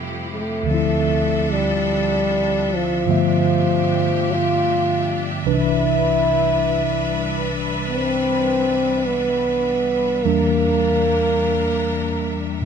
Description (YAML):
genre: jazz ballad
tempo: 50 BPM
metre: 4/4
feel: swing 67% on 8ths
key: unclear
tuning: A4 = 439 Hz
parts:
  - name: mellow tine electric piano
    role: accompaniment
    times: 0.0-12.7 s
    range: C2 to E5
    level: -22 LUFS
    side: equal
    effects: slow stereo tremolo
  - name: clear symphonic string section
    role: sustained chords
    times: 0.0-12.7 s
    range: C3 to E5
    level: -26 LUFS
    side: left 1 dB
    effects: none
  - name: breathy trombone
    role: melody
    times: 0.3-12.5 s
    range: F3 to F4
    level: -20 LUFS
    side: equal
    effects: none
room: light reverb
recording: close, detailed microphones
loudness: -17 LUFS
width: side -7 dB against mid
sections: 0.0-12.7 A section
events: none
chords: 0.0 Fmaj9; 0.7 Dm9; 3.1 G13; 5.5 Cmaj7; 10.3 Em7b5